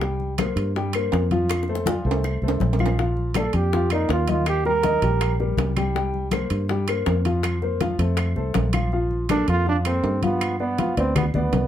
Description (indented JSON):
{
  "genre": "latin, salsa",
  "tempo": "162 BPM",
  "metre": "4/4",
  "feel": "straight",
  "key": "Bb major",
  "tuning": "A4 = 441 Hz",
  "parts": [
    { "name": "warm grand piano", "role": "accompaniment", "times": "0.0-11.7 s", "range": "Eb3 to G5", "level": "-26 LUFS", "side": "left 3 dB", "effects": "none" },
    { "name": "fingered electric bass", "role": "bass", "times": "0.0-11.7 s", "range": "Bb1 to G2", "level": "-24 LUFS", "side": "equal", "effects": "none" },
    { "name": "bongos", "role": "percussion", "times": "0.0-8.9 s", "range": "none", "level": "-32 LUFS", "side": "left 6 dB", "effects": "none" },
    { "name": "congas", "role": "percussion", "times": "0.0-11.7 s", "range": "none", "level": "-28 LUFS", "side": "left 3 dB", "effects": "none" },
    { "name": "claves", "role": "percussion", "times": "0.4-11.3 s", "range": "none", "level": "-36 LUFS", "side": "right 4 dB", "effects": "none" },
    { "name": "timbales", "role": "percussion", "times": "0.4-11.7 s", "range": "none", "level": "-30 LUFS", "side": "right 6 dB", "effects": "none" },
    { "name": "bright trombone", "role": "melody", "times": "3.4-5.4, 9.3-11.7 s", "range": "B3 to Bb4", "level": "-24 LUFS", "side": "right 4 dB", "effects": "none" }
  ],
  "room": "moderate small room reverb, RT60 0.5 s",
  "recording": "heard from further back in the room",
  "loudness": "-20 LUFS",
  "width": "side -11 dB against mid",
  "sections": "0.0-8.9 A section; 8.9-11.7 A section",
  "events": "drum fill 1.5-3.0",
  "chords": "0.0 C5; 1.5 F; 3.0 Bb6; 4.5 Eb; 6.0 C5; 7.4 Fsus4; 8.2 F; 8.9 Bb5; 10.4 G7",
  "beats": "| 0.02 0.39 0.76 1.13 | 1.50 1.87 2.24 2.61 | 2.98 3.36 3.73 4.10 | 4.47 4.84 5.21 5.58 | 5.96 6.33 6.70 7.07 | 7.44 7.81 8.18 8.55 | 8.93 9.30 9.67 10.04 | 10.41 10.79 11.16 11.53"
}